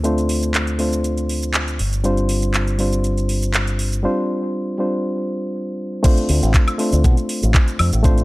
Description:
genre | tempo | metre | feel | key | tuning
nu-disco, nu disco | 120 BPM | 4/4 | swing 54% on 16ths | D minor | A4 = 438 Hz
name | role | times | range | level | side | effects
reed electric piano | accompaniment | 0.0-8.2 s | G3 to C5 | -21 LUFS | equal | low-pass filter, tape echo
fingered electric bass with an envelope filter | bass | 0.0-8.2 s | G1 to B2 | -20 LUFS | equal | sidechain pumping
house drum kit | drums | 0.0-8.2 s | crash cymbal, handclaps, hi-hat, shaker, woodblock | -24 LUFS | right 1 dB | none
electronic kick drum | drums | 6.0-8.2 s | none | -14 LUFS | equal | none
room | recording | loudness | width
digital ambience | none | -17 LUFS | side -20 dB against mid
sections
0.0-6.0 A section; 6.0-8.2 B section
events
break 4.0-6.0; drop 6.0-8.2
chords
0.0 Dm7; 1.8 G7sus4; 6.0 Dm7

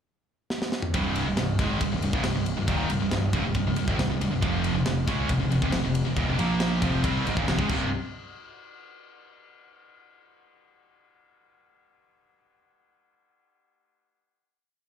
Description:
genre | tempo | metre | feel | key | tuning
heavy metal | 138 BPM | 4/4 | straight | C minor | A4 = 440 Hz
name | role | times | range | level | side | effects
tight metal drum kit | drums | 0.5-7.8 s | crash cymbal, kick drum, ride cymbal, snare drum, toms | -31 LUFS | equal | none
crunchy overdriven guitar | riff | 0.9-7.9 s | C2 to Db4 | -31 LUFS | equal | slapback echo
high-gain distorted guitar | riff | 0.9-7.9 s | C2 to Db4 | -29 LUFS | right 8 dB | distortion, slapback echo
scooped high-gain guitar | riff | 0.9-7.9 s | C2 to Db4 | -30 LUFS | left 8 dB | distortion
fuzz fingered electric bass | bass | 0.9-7.9 s | C1 to Db2 | -30 LUFS | left 1 dB | overdrive
room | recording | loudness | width
light reverb | live gig heard through the venue's PA, club reverb | -23 LUFS | side -8 dB against mid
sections
0.0-0.9 pickup bar; 0.9-7.9 riff; 7.9-9.7 final hit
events
drum fill 0.5-0.9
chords
0.0 N.C.; 0.9 Cm; 4.4 F5; 6.4 Bb5; 6.8 F5; 7.7 C5; 7.9 N.C.

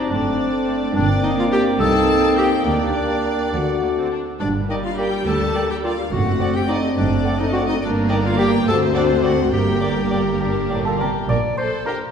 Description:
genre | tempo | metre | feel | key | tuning
cinematic, playful, whimsical film cue | 70 BPM (dotted quarters) | 6/8 | straight | G minor | A4 = 440 Hz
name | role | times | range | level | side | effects
warm symphonic violin section | melody | 0.0-12.1 s | A4 to Bb5 | -30 LUFS | left 5 dB | none
clear clarinet | second line | 0.0-12.0 s | D4 to D5 | -23 LUFS | left 1 dB | none
concert flute | second line | 0.0-11.1 s | F#5 to A5 | -30 LUFS | left 1 dB | none
warm cor anglais | second line | 0.0-11.1 s | D5 to Eb5 | -30 LUFS | equal | none
dark bassoon | accompaniment | 0.0-11.1 s | A3 to C4 | -30 LUFS | right 2 dB | none
rich chamber viola section | accompaniment | 0.0-12.1 s | G3 to F4 | -26 LUFS | right 2 dB | none
mellow French horn section | sustained chords | 0.0-11.0 s | A3 to G4 | -24 LUFS | left 3 dB | none
rich chamber violin section | second line | 0.1-12.0 s | D4 to A5 | -30 LUFS | left 3 dB | none
warm chamber cello section | bass | 0.1-12.0 s | C2 to C3 | -27 LUFS | right 2 dB | none
warm chamber double bass section | bass | 0.1-12.0 s | F#1 to D2 | -25 LUFS | right 2 dB | none
music box | melody | 10.4-12.1 s | G5 to D6 | -28 LUFS | right 1 dB | none
room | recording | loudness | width
wet scoring stage reverb, RT60 1.9 s | heard from further back in the room | -17 LUFS | side -7 dB against mid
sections
0.0-11.3 A section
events
none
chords
0.0 D7/F#; 1.0 Gm; 1.8 Cm7; 2.7 Gm/D; 3.5 D; 4.4 Gm; 6.1 D7/F#; 7.8 Gm; 8.7 D7; 9.5 Gm; 11.3 Bb

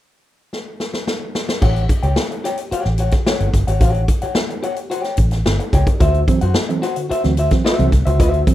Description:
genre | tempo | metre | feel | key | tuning
funk | 110 BPM | 4/4 | straight | A mixolydian | A4 = 440 Hz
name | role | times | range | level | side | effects
swinging big-band drum kit | drums | 0.5-8.5 s | crash cymbal, hi-hat, kick drum, snare drum | -18 LUFS | equal | none
electric guitar at the edge of break-up | accompaniment | 1.6-8.5 s | F#4 to G5 | -22 LUFS | left 2 dB | none
vintage muted fingered electric bass | bass | 1.6-8.4 s | G1 to F#2 | -17 LUFS | equal | none
mellow reed electric piano | stabs | 6.0-8.5 s | D3 to C4 | -21 LUFS | right 5 dB | none
room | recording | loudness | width
little or no reverb | rough home demo mix | -15 LUFS | side -14 dB against mid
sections
0.0-1.6 A section; 1.6-8.5 B section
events
drum fill 0.5-1.6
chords
0.0 N.C.; 1.6 A6; 6.0 D9

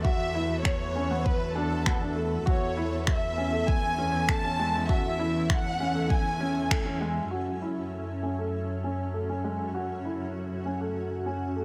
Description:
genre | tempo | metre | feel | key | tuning
piano and strings electronica | 99 BPM | 4/4 | straight | F# minor | A4 = 439 Hz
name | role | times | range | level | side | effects
rich chamber violin section | melody | 0.0-7.0 s | A4 to A5 | -34 LUFS | equal | tape echo
granular cloud pad | sustained chords | 0.0-11.6 s | C#4 to E5 | -40 LUFS | equal | built-in reverb, sidechain pumping
felt-muted upright piano | riff | 0.0-11.6 s | G#3 to F#4 | -35 LUFS | equal | low-pass filter, tape echo
warm studio cello section | bass | 0.0-11.6 s | E2 to F#2 | -35 LUFS | equal | sidechain pumping
electronic kick drum | drums | 0.0-6.8 s | none | -29 LUFS | equal | none
electronic finger snaps | drums | 0.7-6.8 s | none | -34 LUFS | equal | none
room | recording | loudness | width
moderate lush hall reverb, RT60 1.9 s | none | -28 LUFS | mono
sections
0.0-7.3 A section; 7.3-11.6 B section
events
band accent 6.7-7.0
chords
0.0 E7sus4; 2.5 Amaj7/E; 7.3 F#m7

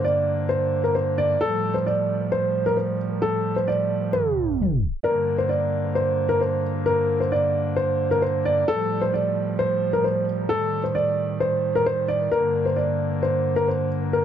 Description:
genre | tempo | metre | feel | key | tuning
hip hop | 132 BPM | 4/4 | half-time | G minor | A4 = 440 Hz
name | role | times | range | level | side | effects
dark concert grand piano | melody | 0.0-14.2 s | A4 to D5 | -22 LUFS | equal | low-pass filter, tape echo
pipe organ, foundations | sustained chords | 0.0-14.2 s | G2 to Bb3 | -26 LUFS | right 1 dB | none
room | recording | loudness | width
light reverb | tape stop | -20 LUFS | side -9 dB against mid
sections
0.0-5.0 A section; 5.0-14.2 B section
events
tape stop 4.1-5.0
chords
0.0 Gm; 1.4 Fadd9; 5.0 Gm; 8.7 Fadd9; 12.3 Gm

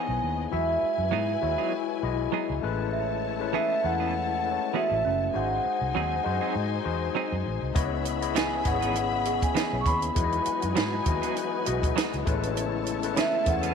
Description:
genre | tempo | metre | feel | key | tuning
lush 1970s-style soul | 100 BPM | 4/4 | swing 54% on 16ths | C# minor | A4 = 440 Hz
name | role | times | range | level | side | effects
vibraphone with soft mallets | melody | 0.0-13.7 s | E5 to C#6 | -28 LUFS | right 2 dB | none
warm symphonic string section | second line | 0.0-13.7 s | B3 to B5 | -34 LUFS | left 10 dB | none
overdriven tine electric piano | accompaniment | 0.0-13.7 s | F#3 to E5 | -32 LUFS | left 13 dB | none
semi-hollow electric guitar | riff | 0.0-13.7 s | E3 to G#4 | -33 LUFS | right 14 dB | tremolo
celesta | texture | 0.0-5.6, 9.3-12.5 s | C#4 to C#6 | -37 LUFS | right 14 dB | none
vintage muted fingered electric bass | bass | 0.1-13.7 s | F#1 to G#2 | -32 LUFS | equal | none
tonewheel organ | sustained chords | 7.8-13.7 s | C#3 to F#4 | -36 LUFS | right 1 dB | fast rotary speaker, chorus vibrato
compact cocktail drum kit | drums | 7.8-13.7 s | hi-hat, kick drum, snare drum | -29 LUFS | right 2 dB | none
room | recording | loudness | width
moderate echo chamber reverb, RT60 2.2 s | 1960s-style stereo with parts hard left and right, lossy compression artefacts | -24 LUFS | side -6 dB against mid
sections
0.0-13.7 A section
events
none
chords
0.0 C#m9; 0.5 Emaj9; 2.6 Amaj9; 5.3 G#7; 7.8 C#m9; 10.2 Emaj9; 12.3 Amaj9

